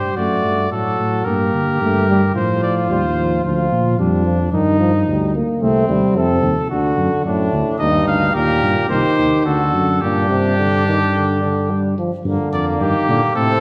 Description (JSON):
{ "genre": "classical, imitative canzona for brass ensemble", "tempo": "110 BPM", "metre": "4/4", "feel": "straight", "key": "G minor from 7.8 s", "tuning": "A4 = 438 Hz", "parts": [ { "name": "clear trumpet", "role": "melody", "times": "0.0-3.4, 7.8-13.6 s", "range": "G4 to F5", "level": "-23 LUFS", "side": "equal", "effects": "none" }, { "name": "mellow trumpet", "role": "second line", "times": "0.0-13.6 s", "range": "Bb3 to A4", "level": "-25 LUFS", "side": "equal", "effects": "none" }, { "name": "mellow euphonium", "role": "accompaniment", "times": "0.0-13.6 s", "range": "G2 to Bb3", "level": "-22 LUFS", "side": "equal", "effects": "none" }, { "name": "dark tuba", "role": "bass", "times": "0.0-13.6 s", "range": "C2 to D3", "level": "-22 LUFS", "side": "equal", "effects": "none" } ], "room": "wet recital hall reverb, RT60 1.6 s", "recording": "none", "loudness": "-17 LUFS", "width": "mono", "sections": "0.0-12.3 A section; 12.3-13.6 B section", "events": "none", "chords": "0.2 D/F#; 1.3 Gm; 2.4 F/A; 3.4 Bb/D; 4.5 Eb/G; 5.6 Adim/C; 6.7 D; 7.8 Eb; 8.9 Cm; 9.5 D; 10.0 Gm", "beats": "0.17 0.72 | 1.26 1.81 2.36 2.90 | 3.45 3.99 4.53 5.07 | 5.62 6.16 6.71 7.25 | 7.80 8.35 8.90 9.45 | 10.01 10.57 11.14 11.70 | 12.26 12.81 13.36" }